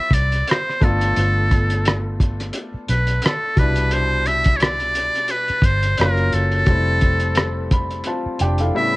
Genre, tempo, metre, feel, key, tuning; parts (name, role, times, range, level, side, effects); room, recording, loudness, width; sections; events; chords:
R&B, neo-soul; 87 BPM; 4/4; swing 56% on 16ths; A4 = 440 Hz
trumpet with metal mute; melody; 0.0-9.0 s; A4 to E5; -21 LUFS; equal; cassette tape, plate reverb
clear grand piano; accompaniment; 0.0-9.0 s; A2 to B5; -26 LUFS; left 2 dB; cassette tape, plate reverb
vintage muted fingered electric bass; bass; 0.1-8.7 s; F1 to C2; -21 LUFS; equal
cloth-damped thuddy drum kit; drums; 0.1-8.7 s; hi-hat, kick drum, rim click; -19 LUFS; equal; cassette tape
light reverb; home recording on cassette; -16 LUFS; side -21 dB against mid
0.0-9.0 A section
grand piano fill 7.4-9.0
0.0 Dm11; 0.8 G9; 3.6 Cmaj9; 6.0 F#maj7; 6.7 Fmaj9